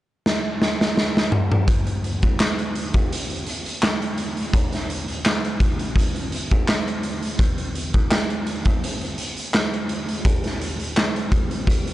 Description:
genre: hip hop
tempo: 84 BPM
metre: 4/4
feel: swing 55% on 16ths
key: none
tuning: none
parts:
  - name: raw garage drum kit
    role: drums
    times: 0.3-11.9 s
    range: handclaps, hi-hat, kick drum, snare drum, toms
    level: -20 LUFS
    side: equal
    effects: none
room: little or no reverb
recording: transformer saturation, nothing above 10.6 kHz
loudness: -20 LUFS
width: side -15 dB against mid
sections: 0.0-1.7 A section; 1.7-11.9 B section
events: drum fill 0.2-1.7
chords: none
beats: 0.25 0.96 | 1.68 2.39 3.11 3.82 | 4.53 5.25 5.96 6.68 | 7.39 8.11 8.82 9.53 | 10.25 10.96 11.68

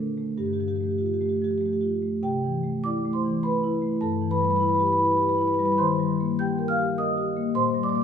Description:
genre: classical, contemporary piece for solo marimba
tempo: 100 BPM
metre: 3/4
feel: uneven beats, rubato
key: unclear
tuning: A4 = 440 Hz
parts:
  - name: marimba with soft mallets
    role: solo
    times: 0.0-8.0 s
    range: G2 to G6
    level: -22 LUFS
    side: equal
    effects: none
room: wet recital hall reverb, RT60 1.8 s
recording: small room reverb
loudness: -22 LUFS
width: side -7 dB against mid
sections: 0.0-2.2 A section; 2.2-8.0 A section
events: none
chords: 0.4 Gsus2; 2.2 C6; 4.0 G69; 5.8 Eb6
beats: | 0.38 1.00 1.61 | 2.23 2.83 3.42 | 4.01 4.61 5.20 | 5.79 6.38 6.97 | 7.54

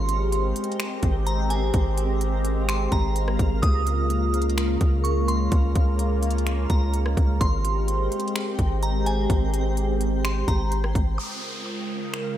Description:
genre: hip hop, atmospheric cloud-rap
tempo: 127 BPM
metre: 4/4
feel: half-time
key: Ab major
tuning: A4 = 439 Hz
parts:
  - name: glassy synth bell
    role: melody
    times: 0.0-12.1 s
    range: Ab5 to Eb6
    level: -32 LUFS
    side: right 2 dB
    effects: chorus, low-pass filter, tape echo
  - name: sweeping resonant pad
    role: sustained chords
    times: 0.0-12.4 s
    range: Db3 to Bb4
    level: -28 LUFS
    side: equal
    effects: chorus, phaser, sidechain pumping, low-pass filter
  - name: long sustained 808-style bass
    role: bass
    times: 0.0-11.2 s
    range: Ab1 to Db2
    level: -24 LUFS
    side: equal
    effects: none
  - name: twinkling granular texture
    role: texture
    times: 0.0-12.4 s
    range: C4 to G5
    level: -36 LUFS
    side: right 1 dB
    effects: built-in reverb, ensemble chorus
  - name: trap drum kit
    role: drums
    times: 0.1-12.2 s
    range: finger snaps, hi-hat, kick drum, rim click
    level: -25 LUFS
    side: equal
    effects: none
  - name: downlifter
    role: sound effects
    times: 11.2-12.4 s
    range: none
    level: -34 LUFS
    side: equal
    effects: none
room: light reverb, digital ambience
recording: none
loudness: -21 LUFS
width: side -11 dB against mid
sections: 0.0-11.2 A section; 11.2-12.4 B section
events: filter sweep 11.2-12.4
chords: 0.0 Abmaj9; 3.6 Db6; 7.4 Abmaj9; 11.2 Db6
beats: 0.32 0.80 1.27 | 1.74 2.21 2.69 3.16 | 3.63 4.10 4.57 5.05 | 5.52 5.99 6.46 6.94 | 7.41 7.88 8.35 8.83 | 9.30 9.77 10.24 10.72 | 11.19 11.66 12.13

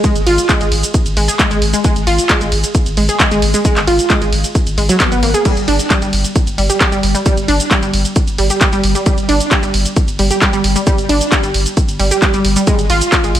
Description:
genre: driving peak-time techno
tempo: 133 BPM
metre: 4/4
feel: straight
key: unclear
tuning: A4 = 440 Hz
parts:
  - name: analog pluck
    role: riff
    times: 0.0-13.3 s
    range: F#3 to Ab4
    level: -16 LUFS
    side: right 1 dB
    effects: chorus, cassette tape, sidechain pumping, tape echo
  - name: electronic kick drum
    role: drums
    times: 0.0-13.2 s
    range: none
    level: -16 LUFS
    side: equal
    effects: none
  - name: punchy analog drum machine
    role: drums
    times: 0.0-13.4 s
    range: crash cymbal, handclaps, hi-hat, ride cymbal, shaker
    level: -17 LUFS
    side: equal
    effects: none
  - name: saturated sub bass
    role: bass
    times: 0.2-13.4 s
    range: G1 to Ab1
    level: -19 LUFS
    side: equal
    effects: overdrive, sidechain pumping, low-pass filter
room: light reverb, digital ambience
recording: echo-heavy mix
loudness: -11 LUFS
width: side -11 dB against mid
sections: 0.0-13.4 A section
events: none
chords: 0.0 N.C.; 5.5 G5; 12.7 N.C.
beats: | 0.04 0.49 0.94 1.39 | 1.84 2.30 2.75 3.20 | 3.65 4.10 4.55 5.00 | 5.45 5.91 6.36 6.81 | 7.26 7.71 8.16 8.61 | 9.06 9.51 9.96 10.42 | 10.87 11.32 11.77 12.22 | 12.67 13.12

